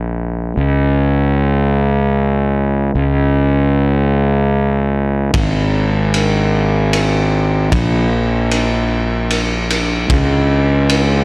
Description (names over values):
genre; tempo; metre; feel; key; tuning
post-rock; 76 BPM; 3/4; straight; unclear; A4 = 441 Hz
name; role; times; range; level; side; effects
fuzz fingered electric bass; bass; 0.0-11.2 s; Ab1 to Db2; -13 LUFS; equal; overdrive
loose indie drum kit; drums; 5.3-11.1 s; kick drum, ride cymbal; -18 LUFS; equal; none
room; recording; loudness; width
little or no reverb; none; -12 LUFS; side -32 dB against mid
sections
0.0-11.2 A section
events
none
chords
none